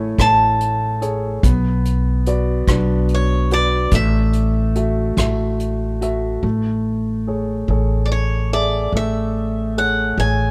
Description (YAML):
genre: acoustic folk-pop ballad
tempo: 48 BPM (dotted quarters)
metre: 6/8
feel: straight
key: A major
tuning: A4 = 440 Hz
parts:
  - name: picked swing-style acoustic guitar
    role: melody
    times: 0.0-10.5 s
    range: C#5 to A5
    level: -22 LUFS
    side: equal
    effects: none
  - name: warm concert grand piano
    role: accompaniment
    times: 0.0-10.5 s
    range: A3 to E5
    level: -25 LUFS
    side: equal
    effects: none
  - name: upright bass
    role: bass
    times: 0.0-10.5 s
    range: A1 to B1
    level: -22 LUFS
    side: equal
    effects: none
  - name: soft brush drum kit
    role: drums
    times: 0.2-6.2 s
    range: hi-hat, kick drum, rim click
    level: -22 LUFS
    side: equal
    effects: none
room: light reverb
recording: none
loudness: -19 LUFS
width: mono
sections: 0.0-6.4 A section; 6.4-10.5 A section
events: none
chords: 0.0 Amaj7; 1.4 Bm; 3.9 F#m7/A; 6.4 Amaj7